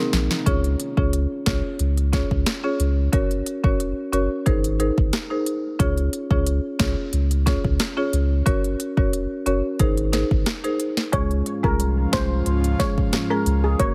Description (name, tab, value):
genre	dancehall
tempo	90 BPM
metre	4/4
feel	straight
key	Db major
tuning	A4 = 440 Hz
part	marimba with medium mallets	accompaniment	0.0-13.9 s	Ab3 to Db5	-27 LUFS	equal	sidechain pumping
part	airy breathy pad	sustained chords	0.0-0.5, 11.5-13.9 s	Ab2 to Gb4	-32 LUFS	equal	chorus, sidechain pumping
part	warm sub bass	bass	0.1-13.9 s	F1 to Db2	-25 LUFS	equal	none
part	afro-pop drum kit	drums	0.1-13.9 s	hi-hat, kick drum, rim click, snare drum	-25 LUFS	equal	none
part	steel pan	melody	11.1-13.9 s	Ab4 to Db5	-30 LUFS	equal	tape echo
room	digital ambience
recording	heavily compressed radio sound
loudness	-22 LUFS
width	mono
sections	0.5-11.1 A section; 11.1-13.9 B section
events	drum fill 0.0-0.5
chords	0.5 Db; 3.1 Gb; 4.5 Abadd9; 5.8 Db; 8.5 Gb; 9.8 Abadd9; 11.1 Db